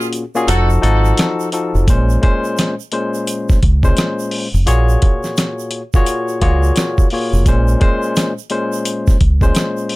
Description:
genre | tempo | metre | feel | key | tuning
hip hop, boom-bap hip-hop | 86 BPM | 4/4 | swing 62% on 16ths | Bb minor | A4 = 440 Hz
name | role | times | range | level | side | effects
barky tine electric piano | accompaniment | 0.0-10.0 s | Bb2 to Db5 | -18 LUFS | left 2 dB | cassette tape, high-pass filter, low-pass filter
egg shaker | percussion | 0.0-9.9 s | none | -33 LUFS | right 18 dB | none
dusty soul sampler-style drum kit | drums | 0.1-10.0 s | hi-hat, kick drum, rim click, snare drum | -15 LUFS | equal | none
clear horn section | stabs | 0.5-0.7 s | Eb4 to A4 | -25 LUFS | right 3 dB | high-pass filter, low-pass filter, digital delay
deep dub fingered electric bass | bass | 0.5-9.5 s | F1 to Db2 | -13 LUFS | equal | none
room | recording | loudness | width
little or no reverb | none | -13 LUFS | side -20 dB against mid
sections
0.0-1.9 A section; 1.9-10.0 B section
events
break 0.0-1.9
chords
0.5 F7b9; 1.9 Bbm9; 4.7 Gbmaj9; 7.5 Bbm9

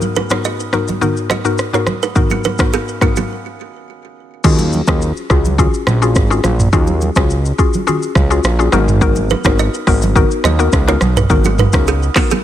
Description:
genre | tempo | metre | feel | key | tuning
afrobeats | 105 BPM | 4/4 | straight | G# dorian | A4 = 440 Hz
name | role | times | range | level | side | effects
mallet-like synth pluck | accompaniment | 0.0-12.4 s | G#2 to A#4 | -18 LUFS | left 5 dB | chorus
afro-pop drum kit | drums | 0.0-12.4 s | crash cymbal, handclaps, hi-hat, kick drum, rim click, shaker, toms | -16 LUFS | right 1 dB | vintage 12-bit sampler grit
congas | percussion | 0.0-12.4 s | none | -23 LUFS | right 4 dB | none
kalimba | riff | 0.2-3.3, 9.3-12.4 s | A#3 to D#5 | -21 LUFS | right 9 dB | digital delay
fat analog bass | bass | 4.4-12.1 s | G#1 to D#2 | -15 LUFS | right 1 dB | none
room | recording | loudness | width
little or no reverb | none | -12 LUFS | side -12 dB against mid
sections
0.0-4.4 A section; 4.4-12.4 B section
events
break 3.3-4.4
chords
0.0 G#m9; 4.4 D#m11; 8.7 G#m9

